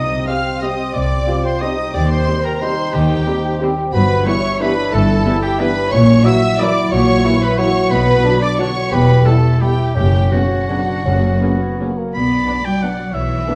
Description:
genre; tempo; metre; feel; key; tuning
classical, orchestral ballroom waltz; 156-197 BPM; 3/4; rubato; B minor from 3.9 s; A4 = 440 Hz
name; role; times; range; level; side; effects
warm symphonic violin section; melody; 0.0-13.6 s; E5 to F6; -29 LUFS; equal; none
bright oboe; second line; 0.0-13.6 s; F#4 to B5; -27 LUFS; equal; none
warm symphonic violin section; second line; 0.0-13.6 s; F#4 to F5; -29 LUFS; equal; none
dark bassoon; accompaniment; 0.0-12.1 s; A#3 to G4; -25 LUFS; equal; none
concert harp; arpeggios; 0.0-13.6 s; E2 to C6; -27 LUFS; equal; none
dark trumpet section; stabs; 0.0-12.0 s; F#4 to F5; -26 LUFS; equal; none
dark symphonic cello section; bass; 0.0-13.6 s; E2 to B3; -22 LUFS; equal; none
warm symphonic double bass section; bass; 0.0-13.4 s; E1 to Eb2; -21 LUFS; equal; none
warm symphonic viola section; accompaniment; 0.3-13.6 s; F#3 to G4; -29 LUFS; equal; none
clear trombone section; sustained chords; 0.3-11.9 s; B2 to G3; -30 LUFS; equal; none
mellow French horn section; sustained chords; 0.3-11.9 s; A#3 to G4; -29 LUFS; equal; none
timpani; percussion; 10.0-11.6 s; F#2; -25 LUFS; equal; none
room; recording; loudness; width
wet stone room reverb, RT60 1.2 s; dark, warm production; -16 LUFS; mono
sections
0.0-12.1 A section; 12.1-13.6 B section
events
none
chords
0.0 Cm; 1.9 Cm/Eb; 3.9 Em/G; 5.9 F#7/A#; 7.9 Bm; 8.9 Em; 10.0 F#sus4; 11.1 F#; 12.1 Bm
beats
0.28 0.63 | 0.95 1.28 1.62 | 1.95 2.28 2.62 | 2.94 3.27 3.62 | 3.94 4.27 4.62 | 4.93 5.26 5.60 | 5.92 6.25 6.60 | 6.92 7.25 7.59 | 7.92 8.25 8.60 | 8.93 9.26 9.62 | 9.96 10.32 10.70 | 11.06 11.43 11.80 | 12.15 12.48 12.82 | 13.14 13.47

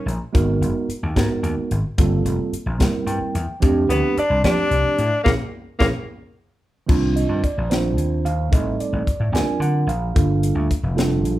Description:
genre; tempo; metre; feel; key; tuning
electric jazz fusion; 73 BPM (dotted quarters); 6/8; straight; C dorian from 6.9 s; A4 = 440 Hz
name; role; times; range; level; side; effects
breathy tenor saxophone; melody; 0.0-0.1, 3.9-5.9 s; A#3 to D4; -21 LUFS; left 3 dB; none
hollow-body jazz guitar; second line; 0.0-0.1, 3.9-5.9 s; G#4 to D5; -27 LUFS; right 3 dB; none
mellow tine electric piano; accompaniment; 0.0-11.4 s; Eb3 to Ab5; -23 LUFS; right 4 dB; none
vintage slap bass; bass; 0.1-11.4 s; F1 to F3; -22 LUFS; equal; none
crisp fusion drum kit; drums; 0.1-11.4 s; crash cymbal, hi-hat, kick drum, snare drum; -21 LUFS; left 1 dB; none
room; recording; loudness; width
moderate large studio reverb, RT60 0.8 s; band playing live in one room; -18 LUFS; side -15 dB against mid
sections
0.0-6.9 A section; 6.9-11.4 B section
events
tine electric piano fill 2.8-3.6; band accent 5.3-6.9; drum fill 6.1-6.9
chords
0.3 G#m9; 2.0 Gm11; 2.8 C7; 3.6 F69; 5.3 A#m7b5; 6.1 N.C.; 6.9 Cm11; 8.5 Am7b5; 9.3 D7alt; 10.2 Gm9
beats
| 0.34 1.16 | 1.98 2.80 | 3.62 4.43 | 5.25 6.07 | 6.89 7.71 | 8.52 9.34 | 10.16 10.97

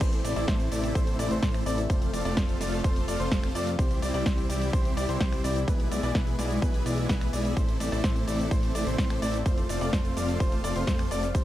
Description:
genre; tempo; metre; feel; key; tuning
EDM, festival progressive house; 127 BPM; 4/4; straight; A minor; A4 = 440 Hz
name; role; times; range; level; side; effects
lush unison pad; sustained chords; 0.0-11.4 s; B2 to F4; -37 LUFS; equal; chorus, sidechain pumping
clear baby grand piano; arpeggios; 0.0-11.4 s; B4 to D5; -34 LUFS; left 2 dB; sidechain pumping, digital delay
big supersaw lead; riff; 0.0-11.4 s; G3 to D5; -31 LUFS; equal; sidechain pumping, digital delay
fat analog bass; bass; 0.0-11.4 s; F1 to A2; -32 LUFS; equal; tube saturation, sidechain pumping
electronic kick drum; drums; 0.0-11.4 s; none; -26 LUFS; equal; overdrive
house drum kit; drums; 0.0-11.4 s; cabasa, crash cymbal, finger snaps, hi-hat, snare drum; -34 LUFS; equal; none
room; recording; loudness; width
little or no reverb; dark, warm production; -24 LUFS; side -14 dB against mid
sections
0.0-11.4 A section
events
none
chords
0.0 Am; 1.9 F; 3.8 C; 5.7 E/B; 7.6 Am; 9.5 F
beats
| 0.01 0.48 0.95 1.43 | 1.90 2.37 2.84 3.32 | 3.79 4.26 4.73 5.21 | 5.68 6.15 6.62 7.10 | 7.57 8.04 8.51 8.99 | 9.46 9.93 10.40 10.88 | 11.35

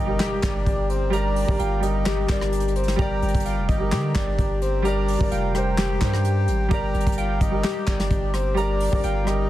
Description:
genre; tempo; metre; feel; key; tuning
hip hop, trap; 129 BPM; 4/4; half-time; G minor; A4 = 440 Hz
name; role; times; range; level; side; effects
breathy flute-like synth lead; second line; 0.0-9.5 s; C5 to G5; -30 LUFS; left 2 dB; chorus, digital delay
dark concert grand piano; accompaniment; 0.0-9.5 s; G3 to D5; -27 LUFS; right 1 dB; low-pass filter
warbly lo-fi synth keys; arpeggios; 0.0-9.5 s; G4 to Bb5; -29 LUFS; left 1 dB; chorus, low-pass filter, digital delay
long sustained 808-style bass; bass; 0.0-9.5 s; F1 to D3; -24 LUFS; equal; none
impact; sound effects; 0.2-1.1 s; none; -37 LUFS; equal; none
soft brush drum kit; drums; 0.2-9.4 s; handclaps, hi-hat, kick drum, rim click, snare drum; -25 LUFS; equal; soft clipping on snare
room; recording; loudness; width
small room ambience; dense, heavily limited modern master, vinyl crackle; -20 LUFS; side -14 dB against mid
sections
0.0-9.5 A section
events
impact 0.0-1.1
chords
0.0 Gm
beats
0.20 0.66 | 1.13 1.59 2.06 2.52 | 2.99 3.46 3.92 4.38 | 4.85 5.32 5.78 6.25 | 6.71 7.18 7.64 8.11 | 8.57 9.04

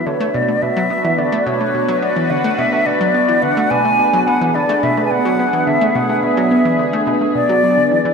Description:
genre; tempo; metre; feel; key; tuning
ambient, sequencer-driven space music; 107 BPM; 4/4; straight; unclear; A4 = 442 Hz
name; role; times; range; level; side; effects
mellow silver concert flute; melody; 0.0-8.1 s; C#5 to G#5; -17 LUFS; left 1 dB; shimmer reverb, analog delay
sweeping resonant pad; sustained chords; 0.0-8.1 s; B3 to B4; -18 LUFS; right 1 dB; chorus, shimmer reverb
analog pluck; riff; 0.1-8.1 s; B2 to B3; -20 LUFS; equal; chorus, shimmer reverb, analog delay
room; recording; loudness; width
wet echo chamber reverb, RT60 2.5 s; echo-heavy mix; -13 LUFS; side -5 dB against mid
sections
0.0-8.1 A section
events
none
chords
0.0 Bm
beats
0.06 0.62 1.18 | 1.74 2.31 2.87 3.43 | 3.99 4.55 5.11 5.67 | 6.23 6.79 7.35 7.91

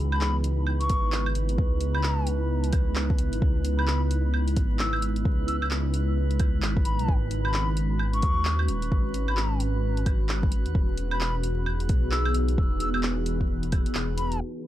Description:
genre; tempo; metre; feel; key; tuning
future garage; 131 BPM; 4/4; swing 61% on 16ths; C# minor; A4 = 439 Hz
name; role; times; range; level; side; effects
ethereal airy pad; sustained chords; 0.0-14.7 s; C#3 to B4; -32 LUFS; left 1 dB; ensemble chorus, built-in reverb, sidechain pumping
dark detuned saw bass; bass; 0.0-14.4 s; D#1 to D#2; -26 LUFS; equal; sidechain pumping
drifting glass-harmonics texture; texture; 0.1-14.7 s; B4; -38 LUFS; right 6 dB; chorus, built-in reverb
wooden flute; melody; 0.1-14.4 s; B5 to E6; -33 LUFS; left 2 dB; analog delay
deep house drum kit; drums; 0.1-14.7 s; claves, handclaps, hi-hat; -32 LUFS; right 2 dB; low-pass filter on hats, vintage 12-bit sampler grit, low-pass filter on perc, low-pass filter on snare, low-pass filter on room
electronic kick drum; drums; 0.9-13.8 s; none; -25 LUFS; equal; vintage 12-bit sampler grit
room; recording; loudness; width
digital ambience; dry, gritty hardware recording, vinyl crackle, low-pass filter; -23 LUFS; side -13 dB against mid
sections
0.0-14.4 A section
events
kick drops out 14.0-14.4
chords
0.0 C#m7; 7.1 G#7sus4; 10.7 Emaj7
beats
0.21 0.67 1.13 | 1.58 2.04 2.50 2.96 | 3.42 3.88 4.33 4.79 | 5.25 5.71 6.17 6.62 | 7.08 7.54 8.00 8.46 | 8.91 9.37 9.83 10.29 | 10.74 11.20 11.66 12.12 | 12.58 13.04 13.49 13.95 | 14.41

